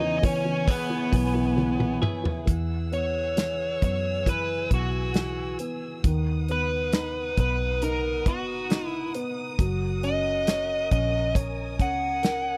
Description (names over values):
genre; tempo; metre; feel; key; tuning
pop ballad; 68 BPM; 4/4; straight; unclear; A4 = 440 Hz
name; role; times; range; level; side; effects
smooth overdriven lead guitar; melody; 0.0-12.6 s; B3 to F#5; -30 LUFS; equal; none
dark upright piano; accompaniment; 0.0-12.6 s; D#3 to C#5; -35 LUFS; equal; none
warm chamber string section; sustained chords; 0.0-12.6 s; B3 to E6; -41 LUFS; equal; none
twelve-string electric guitar; arpeggios; 0.0-2.5 s; C#3 to B4; -34 LUFS; equal; none
vintage muted fingered electric bass; bass; 0.0-12.6 s; F#1 to F#2; -32 LUFS; equal; none
modern studio drum kit; drums; 0.2-12.4 s; hi-hat, kick drum, snare drum, toms; -27 LUFS; equal; none
room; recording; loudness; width
little or no reverb; dry, close 1970s-style studio recording; -26 LUFS; mono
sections
0.0-2.5 A section; 2.5-12.6 B section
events
drum fill 1.6-2.5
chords
0.0 E6; 2.5 Eadd9; 6.0 B; 9.6 F#6